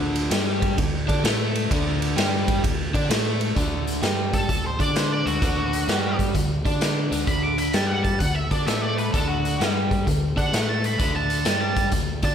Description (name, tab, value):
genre	blues rock power trio and southern rock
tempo	129 BPM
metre	4/4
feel	swing 66% on 8ths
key	D major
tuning	A4 = 440 Hz
part	crunchy overdriven guitar	riff	0.0-12.3 s	D3 to D5	-25 LUFS	equal	spring reverb
part	growling fingered electric bass	bass	0.0-12.3 s	D2 to D3	-27 LUFS	equal	overdrive
part	raw garage drum kit	drums	0.2-12.3 s	hi-hat, kick drum, ride cymbal, snare drum	-24 LUFS	equal	none
part	octave-fuzz lead guitar	melody	4.3-12.3 s	F#4 to D6	-27 LUFS	equal	wah, distortion, slapback echo
room	moderate lush hall reverb, RT60 1.5 s, studio ambience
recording	big arena sound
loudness	-20 LUFS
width	side -8 dB against mid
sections	0.0-3.6 A section; 3.6-12.3 B section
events	lead electric guitar solo 3.6-12.3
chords	0.0 D5